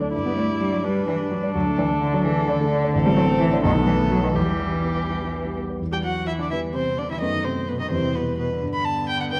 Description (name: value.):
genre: quick classical-period movement for piano quartet.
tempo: 85 BPM (dotted quarters).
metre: 6/8.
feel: straight.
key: E minor.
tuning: A4 = 440 Hz.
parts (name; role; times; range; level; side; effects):
dark concert grand piano; accompaniment; 0.0-9.4 s; A1 to D5; -27 LUFS; equal; none.
muted viola; accompaniment; 0.0-9.4 s; G3 to G4; -31 LUFS; equal; none.
muted violin; melody; 0.1-9.4 s; G4 to B5; -30 LUFS; equal; none.
muted cello; second line; 0.3-9.4 s; B2 to B3; -28 LUFS; equal; none.
room: wet recital hall reverb, RT60 1.5 s.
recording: dark, warm production.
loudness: -23 LUFS.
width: mono.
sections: 0.0-5.8 A section; 5.8-9.4 B section.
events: none.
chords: 0.1 G; 1.5 D5; 2.9 Am; 3.6 B7(no3); 4.4 Em; 7.2 B5/F#; 7.9 Em; 8.6 G.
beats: | 0.13 0.84 | 1.55 2.25 | 2.94 3.64 | 4.36 5.08 | 5.80 6.51 | 7.22 7.92 | 8.62 9.32.